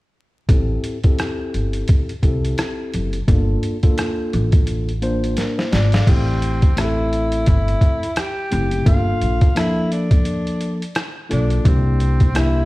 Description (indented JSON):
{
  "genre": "hip hop, jazz-hop",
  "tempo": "86 BPM",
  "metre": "4/4",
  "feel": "swing 60% on 16ths",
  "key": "unclear",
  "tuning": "A4 = 440 Hz",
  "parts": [
    { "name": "mellow tine electric piano", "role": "accompaniment", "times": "0.5-12.7 s", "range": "F3 to F5", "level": "-23 LUFS", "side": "left 1 dB", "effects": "none" },
    { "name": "upright bass", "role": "bass", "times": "0.5-12.7 s", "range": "F#1 to C2", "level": "-20 LUFS", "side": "equal", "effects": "none" },
    { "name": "boom bap sampler-style drum kit", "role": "drums", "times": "0.5-12.6 s", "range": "crash cymbal, hi-hat, kick drum, rim click, snare drum", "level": "-17 LUFS", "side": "equal", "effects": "none" },
    { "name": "breathy tenor saxophone", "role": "melody", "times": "5.7-12.7 s", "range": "C4 to G4", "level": "-25 LUFS", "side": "left 1 dB", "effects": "none" }
  ],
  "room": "little or no reverb",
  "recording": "played on a big sound system in a bare room, stone room reverb, vinyl crackle",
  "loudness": "-16 LUFS",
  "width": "side -20 dB against mid",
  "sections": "0.5-6.1 A section; 6.1-12.7 B section",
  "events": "drum fill 5.4-6.1",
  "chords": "0.5 Am7; 3.3 Gm9 (rootless); 6.1 Am7; 8.9 Gm9 (rootless); 11.7 C9"
}